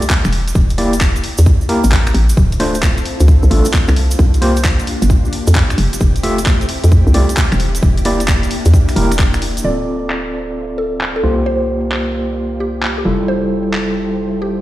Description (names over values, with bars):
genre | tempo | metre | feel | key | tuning
UK garage, two-step garage | 132 BPM | 4/4 | swing 66% on 16ths | D minor | A4 = 440 Hz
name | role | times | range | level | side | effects
garage drum kit | drums | 0.0-13.9 s | finger snaps, handclaps, hi-hat | -22 LUFS | equal | low-pass filter on hats, low-pass filter on snare
cabasa | percussion | 0.0-9.6 s | none | -29 LUFS | right 3 dB | none
electronic kick drum | drums | 0.1-9.3 s | none | -12 LUFS | equal | none
hollow knocking FM bass | bass | 0.3-14.6 s | D1 to F2 | -15 LUFS | equal | none
overdriven tine electric piano | stabs | 0.8-14.6 s | G3 to E5 | -19 LUFS | equal | medium tremolo, low-pass filter, ping-pong delay
soft string machine | sustained chords | 2.4-14.6 s | A3 to G5 | -26 LUFS | left 1 dB | ensemble chorus, vintage 12-bit sampler grit, sidechain pumping
mallet-like synth pluck | melody | 9.6-14.6 s | G4 to D5 | -23 LUFS | right 1 dB | chorus, phaser, ping-pong delay
room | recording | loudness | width
light reverb, digital ambience | played on a big sound system in a bare room, stone room reverb | -12 LUFS | side -15 dB against mid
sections
0.0-9.6 A section; 9.6-14.6 B section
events
none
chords
0.3 Edim; 2.4 Dm7; 4.0 C7sus4; 5.8 Fmaj9; 7.6 Em7b5; 9.6 Dm7; 11.2 C7sus4; 13.1 Fmaj9